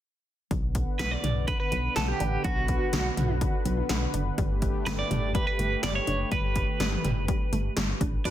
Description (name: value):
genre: synth-pop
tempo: 124 BPM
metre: 4/4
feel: straight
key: B minor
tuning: A4 = 440 Hz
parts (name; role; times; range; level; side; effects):
- brassy analog pad; sustained chords; 0.5-8.2 s; D3 to F#5; -34 LUFS; equal; chorus
- wide unison pluck; arpeggios; 0.5-8.2 s; D3 to D4; -36 LUFS; left 3 dB; auto-pan, tape echo
- solid FM bass; bass; 0.5-8.3 s; F#1 to B1; -30 LUFS; equal; none
- 80s electronic pad drums; drums; 0.5-8.3 s; crash cymbal, hi-hat, kick drum, snare drum, toms; -29 LUFS; equal; gated reverb on snare and toms
- twelve-string electric guitar; melody; 1.0-8.3 s; F#4 to D5; -31 LUFS; right 3 dB; tremolo, tape echo
- analog synth brass; accompaniment; 8.3 s; D4 to B4; -31 LUFS; equal; chorus
- downlifter; sound effects; 8.3 s; none; -35 LUFS; equal; none
room: light reverb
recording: dense, heavily limited modern master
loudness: -25 LUFS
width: side -12 dB against mid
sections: 0.5-8.3 A section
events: none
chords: 0.5 Bm; 4.4 Gadd9